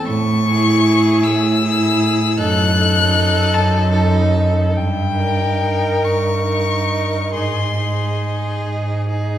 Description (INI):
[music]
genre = classical, slow romantic movement for string quartet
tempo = 45-53 BPM (dotted quarters)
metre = 6/8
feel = rubato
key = unclear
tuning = A4 = 439 Hz
[part]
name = rich violin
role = melody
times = 0.0-8.6 s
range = G5 to F#6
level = -20 LUFS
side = left 6 dB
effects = none
[part]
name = clear violin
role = second line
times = 0.0-9.4 s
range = G#4 to A#4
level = -24 LUFS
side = left 1 dB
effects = none
[part]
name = rich viola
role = accompaniment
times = 0.0-9.4 s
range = D#4 to E4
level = -21 LUFS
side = right 1 dB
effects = none
[part]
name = rich cello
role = bass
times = 0.1-9.4 s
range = F#2 to A2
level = -18 LUFS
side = right 1 dB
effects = none
[sound]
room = wet recital hall reverb, RT60 1.9 s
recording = heard from further back in the room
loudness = -14 LUFS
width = side -11 dB against mid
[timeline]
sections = 0.0-9.4 A section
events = none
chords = 0.1 Amaj7; 2.4 D#dim/F#; 4.7 D#7/G; 7.4 G#